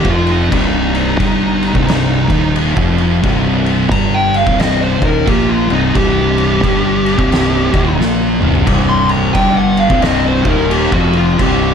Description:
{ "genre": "stoner and doom metal", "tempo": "88 BPM", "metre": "4/4", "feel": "swing 62% on 8ths", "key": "C minor", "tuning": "A4 = 435 Hz", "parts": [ { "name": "fuzz lead guitar", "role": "melody", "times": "0.0-11.7 s", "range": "Eb4 to C6", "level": "-17 LUFS", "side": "equal", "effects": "distortion" }, { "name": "thick fuzz guitar", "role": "riff", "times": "0.0-11.7 s", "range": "C2 to Bb3", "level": "-18 LUFS", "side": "left 10 dB", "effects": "distortion" }, { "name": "thick fuzz guitar", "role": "riff", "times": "0.0-11.7 s", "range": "C2 to Bb3", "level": "-18 LUFS", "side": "right 11 dB", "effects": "distortion" }, { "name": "fuzz fingered electric bass", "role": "bass", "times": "0.0-11.7 s", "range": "C1 to Bb1", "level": "-18 LUFS", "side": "equal", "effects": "overdrive" }, { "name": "oversized low-tuned drum kit", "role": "drums", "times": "0.0-11.6 s", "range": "crash cymbal, kick drum, snare drum, toms", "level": "-18 LUFS", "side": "equal", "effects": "none" }, { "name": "raw garage guitar", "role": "riff", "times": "8.7-11.7 s", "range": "C2 to G3", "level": "-19 LUFS", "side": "left 1 dB", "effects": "overdrive" } ], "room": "light reverb", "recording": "none", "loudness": "-11 LUFS", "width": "side -7 dB against mid", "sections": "0.0-11.7 A section", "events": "lead electric guitar solo 0.0-11.7; drum fill 8.0-8.7", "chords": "0.0 Cm" }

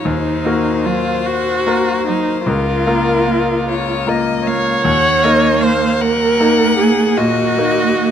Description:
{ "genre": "classical, slow romantic movement for piano quartet", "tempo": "50 BPM (dotted quarters)", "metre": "12/8", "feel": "rubato", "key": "unclear", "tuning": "A4 = 439 Hz", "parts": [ { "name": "rich violin", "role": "melody", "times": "0.0-8.1 s", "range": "Bb4 to Gb5", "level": "-21 LUFS", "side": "left 7 dB", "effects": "none" }, { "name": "bright concert grand piano", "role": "accompaniment", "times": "0.0-8.1 s", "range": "Db2 to Bb4", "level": "-18 LUFS", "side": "left 3 dB", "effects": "none" }, { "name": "rich viola", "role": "accompaniment", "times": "0.1-8.1 s", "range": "Eb4 to Db5", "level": "-17 LUFS", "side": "right 2 dB", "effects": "none" }, { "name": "rich cello", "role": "second line", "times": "0.9-8.1 s", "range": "Gb3 to Bb3", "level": "-20 LUFS", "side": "right 6 dB", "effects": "none" } ], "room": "moderate recital hall reverb, RT60 1.7 s", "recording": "close, detailed microphones", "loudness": "-13 LUFS", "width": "side -9 dB against mid", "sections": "0.0-8.1 A section", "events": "none", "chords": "0.1 Ebm; 2.5 Bbm/Db; 4.9 Ebm" }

